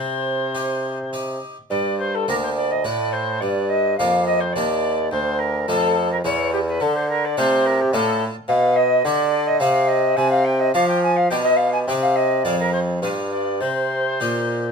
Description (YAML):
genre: classical, baroque-style sonata movement with continuo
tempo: 106 BPM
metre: 3/4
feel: straight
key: G minor, C minor from 8.5 s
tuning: A4 = 444 Hz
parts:
  - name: mellow alto recorder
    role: melody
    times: 0.0-14.7 s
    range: G4 to Ab5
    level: -21 LUFS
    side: left 1 dB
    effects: none
  - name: harpsichord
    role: accompaniment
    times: 0.0-14.7 s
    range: D2 to Ab4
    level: -27 LUFS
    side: equal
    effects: none
  - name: clear bassoon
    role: bass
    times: 0.0-14.7 s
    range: D2 to F3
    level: -22 LUFS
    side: right 1 dB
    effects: none
room: light reverb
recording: minimal, uncompressed stereo recording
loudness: -18 LUFS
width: side -5 dB against mid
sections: 0.0-1.7 A section; 1.7-14.7 A section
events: none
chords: 0.0 Cm; 1.7 Gm; 2.9 F#dim/A; 3.4 Gm; 5.1 Dm; 6.2 E5; 6.8 Dm; 8.5 G/B; 9.6 Cm; 10.2 Fm69/C; 11.3 G7/B; 11.9 Cm; 12.4 Fm; 13.0 G7(no3); 13.6 Cm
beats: 0.53 1.12 | 1.71 2.28 2.86 | 3.42 3.99 4.55 | 5.11 5.67 6.24 | 6.81 7.37 7.93 | 8.49 9.05 9.61 | 10.17 10.74 11.30 | 11.87 12.44 13.01 | 13.61 14.20